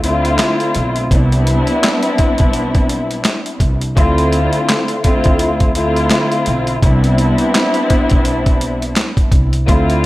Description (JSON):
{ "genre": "hip hop, boom-bap hip-hop", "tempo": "84 BPM", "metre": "4/4", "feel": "swing 58% on 16ths", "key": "unclear", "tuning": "A4 = 436 Hz", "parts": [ { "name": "dark studio string section", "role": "accompaniment", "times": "0.0-10.1 s", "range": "D3 to F4", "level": "-15 LUFS", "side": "left 1 dB", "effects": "cassette tape, high-pass filter, low-pass filter" }, { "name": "upright bass", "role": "bass", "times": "0.0-10.1 s", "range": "B1 to D2", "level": "-18 LUFS", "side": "equal", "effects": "none" }, { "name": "boom bap sampler-style drum kit", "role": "drums", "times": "0.0-10.0 s", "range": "handclaps, hi-hat, kick drum, snare drum", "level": "-15 LUFS", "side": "equal", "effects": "none" } ], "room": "studio ambience", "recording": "none", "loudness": "-12 LUFS", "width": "side -17 dB against mid", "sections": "0.0-10.1 A section", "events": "none", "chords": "0.0 Dm7; 1.1 Cmaj7; 4.0 Dm7; 6.8 Cmaj7" }